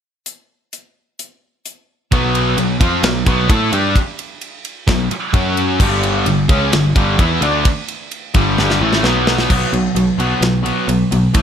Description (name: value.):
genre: hard rock.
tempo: 130 BPM.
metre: 4/4.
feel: straight.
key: B minor.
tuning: A4 = 440 Hz.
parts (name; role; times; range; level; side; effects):
tight metal drum kit; drums; 0.3-11.4 s; crash cymbal, hi-hat, kick drum, ride cymbal, snare drum; -18 LUFS; equal; none.
crunchy overdriven guitar; riff; 2.1-11.4 s; G2 to A4; -20 LUFS; right 9 dB; spring reverb.
high-gain distorted guitar; riff; 2.1-9.5 s; G2 to A4; -21 LUFS; right 2 dB; distortion.
overdriven electric guitar; riff; 2.1-11.4 s; G2 to A4; -20 LUFS; left 11 dB; none.
picked electric bass; bass; 2.1-11.4 s; G1 to A2; -20 LUFS; equal; none.
room: light reverb, small room ambience.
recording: none.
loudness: -13 LUFS.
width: side -8 dB against mid.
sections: 0.3-2.1 A section; 2.1-9.5 B section; 9.5-11.4 C section.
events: drum fill 8.6-9.5.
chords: 0.3 N.C.; 2.1 Bm; 5.3 F#5; 5.8 G5; 9.0 B5.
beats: | 0.27 0.73 1.20 1.66 | 2.12 2.58 3.04 3.50 | 3.97 4.43 4.89 5.35 | 5.81 6.27 6.73 7.20 | 7.66 8.12 8.58 9.04 | 9.50 9.97 10.43 10.89 | 11.35.